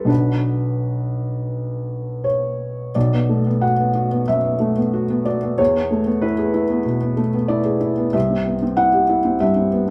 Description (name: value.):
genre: neoclassical minimalist piano.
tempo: 82-96 BPM.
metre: 4/4.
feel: rubato.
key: unclear.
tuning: A4 = 438 Hz.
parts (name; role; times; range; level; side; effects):
felt-muted upright piano; solo; 0.0-9.9 s; B1 to F#5; -20 LUFS; equal; none.
room: moderate studio reverb, RT60 0.7 s.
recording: band playing live in one room.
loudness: -20 LUFS.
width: mono.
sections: 0.0-3.0 A section; 3.0-9.9 B section.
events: none.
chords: 0.1 Bm; 5.6 E; 8.1 C.